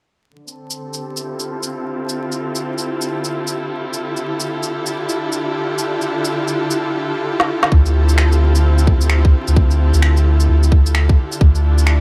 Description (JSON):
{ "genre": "future garage", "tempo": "130 BPM", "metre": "4/4", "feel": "swing 63% on 16ths", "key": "D minor", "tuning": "A4 = 438 Hz", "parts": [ { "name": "warm symphonic string section", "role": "sustained chords", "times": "0.3-12.0 s", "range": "D3 to A4", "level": "-24 LUFS", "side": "equal", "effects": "sidechain pumping, low-pass filter" }, { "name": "electronic shaker, snare drum and finger snaps", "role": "drums", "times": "0.5-12.0 s", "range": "none", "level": "-24 LUFS", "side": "equal", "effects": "none" }, { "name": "soft dub sub bass", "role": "bass", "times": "7.7-12.0 s", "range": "D2", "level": "-15 LUFS", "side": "equal", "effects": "sidechain pumping" }, { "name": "electronic kick drum", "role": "drums", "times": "7.7-11.5 s", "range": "none", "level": "-14 LUFS", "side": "equal", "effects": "none" } ], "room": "light reverb", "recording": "vinyl crackle", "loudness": "-17 LUFS", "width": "mono", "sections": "0.3-7.7 A section; 7.7-12.0 B section", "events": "filter sweep on string section 0.3-7.7; drum fill 7.4-7.7", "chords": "0.3 Dm11" }